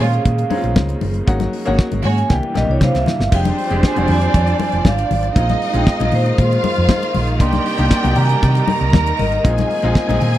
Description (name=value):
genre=disco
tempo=118 BPM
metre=4/4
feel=straight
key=F dorian from 3.3 s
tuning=A4 = 440 Hz
part: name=vibraphone with medium mallets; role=melody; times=0.0-10.2 s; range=C5 to C6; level=-21 LUFS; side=right 2 dB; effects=none
part: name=warm studio string section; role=second line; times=0.0-10.4 s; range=Ab3 to Bb5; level=-23 LUFS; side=equal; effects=none
part: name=clear baby grand piano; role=accompaniment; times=0.0-10.4 s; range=E3 to Ab4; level=-24 LUFS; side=left 2 dB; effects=none
part: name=warm studio string section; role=sustained chords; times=0.0-10.4 s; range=C3 to D5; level=-25 LUFS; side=right 3 dB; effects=none
part: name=hollow-body short-scale fingered electric bass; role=bass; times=0.0-10.4 s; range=F1 to C3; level=-18 LUFS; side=equal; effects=none
part: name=damped 70s drum kit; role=drums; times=0.1-10.4 s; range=crash cymbal, hi-hat, kick drum, snare drum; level=-15 LUFS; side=equal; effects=none
part: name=congas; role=percussion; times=0.3-10.3 s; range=none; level=-25 LUFS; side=left 6 dB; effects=none
room=little or no reverb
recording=dry, close 1970s-style studio recording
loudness=-14 LUFS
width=side -13 dB against mid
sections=0.0-3.3 A section; 3.3-10.4 B section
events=vibraphone solo 0.0-3.3; drum fill 2.3-3.3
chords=0.0 Bbm9; 1.3 Ab9sus4; 2.3 C7; 3.3 Fm69; 5.4 Bb9sus4; 7.4 Cm9; 9.4 Bb9sus4